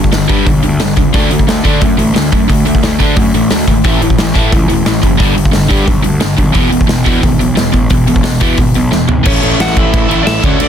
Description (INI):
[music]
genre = punk rock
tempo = 177 BPM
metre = 4/4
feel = straight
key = unclear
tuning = A4 = 441 Hz
[part]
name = biting overdriven guitar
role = riff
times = 0.0-10.7 s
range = E2 to D4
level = -12 LUFS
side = left 1 dB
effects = none
[part]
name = fuzz picked electric bass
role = bass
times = 0.0-10.7 s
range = E1 to D3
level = -16 LUFS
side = equal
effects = overdrive
[part]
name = big rock drum kit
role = drums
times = 0.0-10.7 s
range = crash cymbal, hi-hat, kick drum, snare drum, toms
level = -12 LUFS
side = equal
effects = none
[part]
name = lightly driven lead guitar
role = melody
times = 9.3-10.7 s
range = C#4 to F#5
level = -17 LUFS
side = equal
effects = none
[sound]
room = little or no reverb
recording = dense, heavily limited modern master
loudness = -8 LUFS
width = side -8 dB against mid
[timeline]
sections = 0.0-9.3 A section; 9.3-10.7 B section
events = drum fill 8.9-9.3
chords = 0.0 G; 1.1 D; 3.8 A5; 5.2 G; 6.6 E; 9.3 A